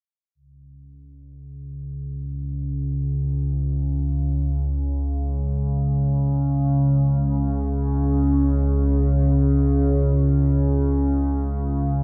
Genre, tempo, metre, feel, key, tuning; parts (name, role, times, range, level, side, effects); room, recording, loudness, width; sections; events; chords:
ambient; free time; A4 = 442 Hz
analog drone; solo; 1.5-12.0 s; C#2 to C#3; -22 LUFS; equal; chorus, tape echo
wet echo chamber reverb, RT60 2.0 s; echo-heavy mix, cassette tape; -22 LUFS; mono
0.4-12.0 A section